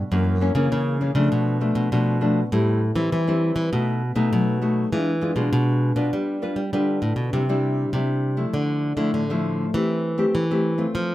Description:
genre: samba and choro.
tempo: 100 BPM.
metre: 4/4.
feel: straight.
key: C major from 7.3 s.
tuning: A4 = 440 Hz.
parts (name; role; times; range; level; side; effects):
nylon-string guitar; accompaniment; 0.0-11.1 s; F#2 to B4; -23 LUFS; left 1 dB; none.
nylon-string guitar; bass; 0.0-11.1 s; F#2 to G3; -23 LUFS; equal; none.
room: moderate small room reverb, RT60 0.6 s.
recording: none.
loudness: -20 LUFS.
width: side -15 dB against mid.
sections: 0.0-7.3 A section; 7.3-11.1 B section.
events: none.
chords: 0.1 F#7; 1.3 Bm7b5; 2.5 Am7; 3.7 B7; 4.9 E7b9; 6.1 G7; 7.3 Cadd9; 8.5 Dmadd9; 9.7 Am7/E.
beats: | 0.12 0.72 1.32 1.92 | 2.52 3.12 3.72 4.33 | 4.93 5.53 6.13 6.73 | 7.33 7.94 8.54 9.14 | 9.74 10.35 10.95.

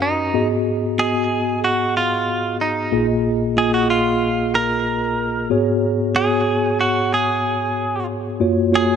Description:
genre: pop.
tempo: 93 BPM.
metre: 4/4.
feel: straight.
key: unclear.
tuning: A4 = 442 Hz.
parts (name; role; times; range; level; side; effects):
direct-recorded clean electric guitar; melody; 0.0-9.0 s; D#4 to A#4; -20 LUFS; right 2 dB; none.
mellow tine electric piano; accompaniment; 0.0-9.0 s; A#1 to F#5; -19 LUFS; left 1 dB; medium stereo tremolo.
room: moderate plate reverb, RT60 2.7 s.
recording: faint mains hum.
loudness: -17 LUFS.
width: side -7 dB against mid.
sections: 0.0-9.0 A section.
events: none.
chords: 0.3 G#m7; 2.9 A#7sus4; 5.5 C#7sus4/G#; 8.4 F#maj7.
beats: 0.02 | 0.67 1.31 1.96 2.60 | 3.25 3.89 4.54 5.18 | 5.83 6.47 7.12 7.76 | 8.41.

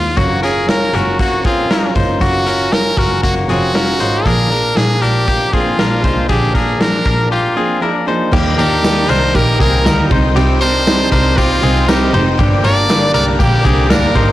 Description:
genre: jangly indie pop.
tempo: 118 BPM.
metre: 4/4.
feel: straight.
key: Eb major.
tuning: A4 = 440 Hz.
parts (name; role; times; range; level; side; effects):
brilliant trumpet; melody; 0.0-14.3 s; F4 to D5; -17 LUFS; equal; plate reverb.
rich double bass; bass; 0.0-14.3 s; F1 to Bb2; -17 LUFS; equal; tube saturation.
fingerpicked steel-string acoustic guitar; accompaniment; 0.2-14.3 s; G2 to Bb4; -19 LUFS; right 3 dB; none.
direct-recorded clean electric guitar; arpeggios; 0.2-14.3 s; Bb3 to C5; -19 LUFS; left 5 dB; plate reverb.
raw garage drum kit; drums; 0.2-14.3 s; crash cymbal, hi-hat, kick drum, ride cymbal, snare drum; -18 LUFS; equal; none.
string machine, violins; sustained chords; 8.3-14.3 s; Bb4 to Eb6; -24 LUFS; right 1 dB; ensemble chorus, plate reverb.
tambourine; percussion; 8.3-14.0 s; none; -35 LUFS; right 10 dB; none.
room: light reverb.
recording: blown-out, overdriven recording, vinyl crackle, overdrive.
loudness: -11 LUFS.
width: side -14 dB against mid.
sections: 0.0-8.3 A section; 8.3-14.3 B section.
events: none.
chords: 0.2 Gbmaj7; 4.3 Bb7; 8.3 Eb; 10.1 Cm; 12.4 Gm.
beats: | 0.17 0.68 1.20 1.71 | 2.22 2.73 3.24 3.75 | 4.26 4.77 5.28 5.79 | 6.30 6.81 7.32 7.83 | 8.33 8.84 9.35 9.86 | 10.36 10.87 11.37 11.88 | 12.38 12.89 13.39 13.90.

